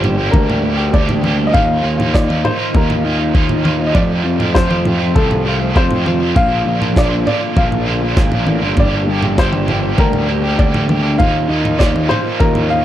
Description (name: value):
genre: indie rock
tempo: 99 BPM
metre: 4/4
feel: straight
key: G minor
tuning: A4 = 439 Hz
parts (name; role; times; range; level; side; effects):
- clear upright piano; melody; 0.0-12.8 s; A4 to F5; -20 LUFS; left 1 dB; slapback echo
- overdriven electric guitar; riff; 0.0-12.8 s; F2 to G4; -18 LUFS; right 1 dB; harmonic tremolo
- fuzz picked electric bass; bass; 0.0-12.8 s; G1 to F2; -18 LUFS; equal; overdrive
- jungle sampler-style drum kit; drums; 0.0-12.7 s; kick drum, snare drum, toms; -17 LUFS; equal; none
room: little or no reverb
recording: dry, close 1970s-style studio recording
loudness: -12 LUFS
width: side -12 dB against mid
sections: 0.0-12.8 A section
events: none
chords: 0.0 Gm; 1.5 Ebsus2; 4.0 F; 6.4 Bb; 8.8 Gm; 11.2 Ebsus2